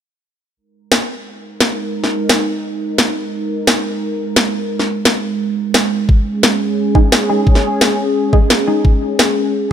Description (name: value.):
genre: dark technical drum and bass.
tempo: 174 BPM.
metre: 4/4.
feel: straight.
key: unclear.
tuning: A4 = 440 Hz.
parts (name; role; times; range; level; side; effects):
sweeping resonant pad; sustained chords; 0.6-9.7 s; G#3 to A#4; -18 LUFS; right 1 dB; chorus, sidechain pumping.
electronic snare drum; drums; 0.9-9.3 s; none; -14 LUFS; equal; none.
electronic kick drum; drums; 6.1-8.9 s; none; -11 LUFS; equal; none.
filtered dub chord stab; stabs; 7.0-9.7 s; G#3 to G#4; -20 LUFS; equal; phaser, analog chorus, ping-pong delay.
room: moderate lush hall reverb, RT60 2.3 s.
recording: none.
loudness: -13 LUFS.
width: side -9 dB against mid.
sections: 0.6-9.7 A section.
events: none.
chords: 0.6 G#sus2.